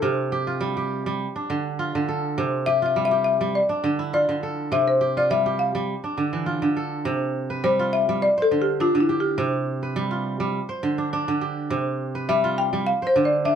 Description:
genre	west african traditional, West African string and xylophone music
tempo	103 BPM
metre	4/4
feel	straight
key	C major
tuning	A4 = 443 Hz
part	folk marimba with hard mallets	melody	0.0-13.6 s	E4 to G5	-21 LUFS	left 3 dB	none
part	kora	arpeggios	0.0-13.6 s	C3 to C5	-24 LUFS	right 3 dB	none
room	moderate studio reverb, RT60 0.5 s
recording	band playing live in one room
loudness	-21 LUFS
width	side -8 dB against mid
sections	0.0-7.0 A section; 7.0-13.6 B section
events	marimba solo 7.0-13.6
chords	0.0 C5; 1.2 Dm; 2.4 C5; 3.5 Dm; 4.7 C5; 5.9 Dm; 7.0 C5; 8.2 Dm11; 9.4 C5; 10.5 D7sus4; 11.7 C5; 12.9 Dm7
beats	| 0.03 0.62 1.20 1.79 | 2.38 2.96 3.54 4.13 | 4.71 5.30 5.88 6.47 | 7.05 7.63 8.21 8.79 | 9.38 9.96 10.54 11.12 | 11.70 12.28 12.86 13.44

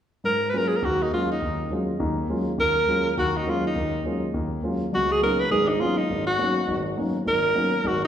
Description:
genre	jazz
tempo	205 BPM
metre	4/4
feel	swing 61% on 8ths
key	G# dorian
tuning	A4 = 440 Hz
part	dark concert grand piano	accompaniment	0.2-8.1 s	G#1 to E#4	-26 LUFS	equal	none
part	clear alto saxophone	melody	0.3-8.1 s	D4 to B4	-23 LUFS	equal	none
room	wet recital hall reverb, RT60 1.6 s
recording	recorded in a church or concert hall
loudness	-21 LUFS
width	side -9 dB against mid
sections	0.2-8.1 A section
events	none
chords	0.2 G#13sus4; 4.9 C#13sus4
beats	| 0.24 0.53 0.83 1.12 | 1.41 1.71 2.00 2.29 | 2.58 2.88 3.17 3.46 | 3.76 4.05 4.34 4.63 | 4.92 5.22 5.51 5.80 | 6.09 6.38 6.67 6.97 | 7.26 7.55 7.84

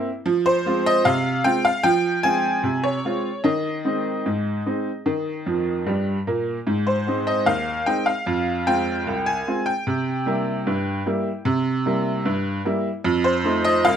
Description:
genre	ragtime piano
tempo	75 BPM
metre	2/4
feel	straight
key	unclear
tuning	A4 = 440 Hz
part	clear upright piano	solo	0.0-14.0 s	C2 to Ab5	-20 LUFS	equal	none
room	moderate studio reverb, RT60 0.8 s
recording	none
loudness	-20 LUFS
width	side -8 dB against mid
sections	0.0-14.0 A section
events	upright piano fill 5.5-6.7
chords	0.3 Fm; 3.5 Ab/Eb; 5.1 Eb; 6.7 Ab; 8.3 Fm; 9.9 C7; 13.1 F7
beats	| 0.26 1.05 | 1.85 2.65 | 3.45 4.25 | 5.06 5.86 | 6.66 7.46 | 8.26 9.06 | 9.86 10.66 | 11.46 12.26 | 13.05 13.85

